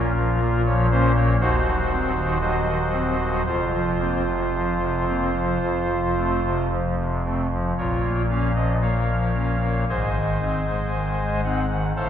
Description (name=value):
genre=classical, chorale-style piece for pipe organ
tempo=55-60 BPM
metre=4/4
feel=rubato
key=Bb minor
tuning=A4 = 440 Hz
part: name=pipe organ, soft reed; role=solo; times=0.0-12.1 s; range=Eb1 to Ab5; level=-20 LUFS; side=equal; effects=none
room=wet church reverb, RT60 2.8 s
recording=heard from further back in the room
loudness=-20 LUFS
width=side -9 dB against mid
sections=0.0-12.1 A section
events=none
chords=0.0 Bbm; 1.4 Cdim/Eb; 3.5 Fsus4; 5.6 F; 7.8 Bbm; 9.9 Ab